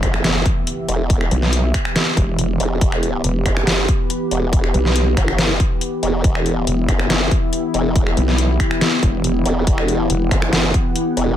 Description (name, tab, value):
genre	heavy wobble dubstep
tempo	140 BPM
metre	4/4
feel	half-time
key	E minor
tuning	A4 = 440 Hz
part	supersaw pad	sustained chords	0.0-11.4 s	E3 to F#5	-25 LUFS	right 1 dB	sidechain pumping, low-pass filter
part	formant-sweep wobble bass	bass	0.0-11.4 s	E1 to G1	-20 LUFS	equal	chorus, overdrive
part	dubstep drum kit	drums	0.0-11.3 s	finger snaps, hi-hat, snare drum	-21 LUFS	equal	none
part	electronic kick drum	drums	0.0-10.8 s	none	-19 LUFS	equal	none
part	impact	sound effects	0.0-1.1 s	none	-33 LUFS	equal	none
part	warbly tape-like pad	texture	0.0-11.4 s	B3 to G4	-25 LUFS	left 2 dB	chorus, built-in reverb, sidechain pumping
part	vowel-sweep wobble bass	bass	1.3-10.3 s	E1 to B1	-17 LUFS	equal	chorus, overdrive
room	little or no reverb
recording	none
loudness	-15 LUFS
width	side -11 dB against mid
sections	0.0-11.4 A section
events	impact 0.0-1.1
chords	0.0 Em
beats	0.24 0.67 | 1.10 1.53 1.96 2.38 | 2.81 3.24 3.67 4.10 | 4.53 4.96 5.38 5.81 | 6.24 6.67 7.10 7.53 | 7.96 8.38 8.81 9.24 | 9.67 10.10 10.53 10.96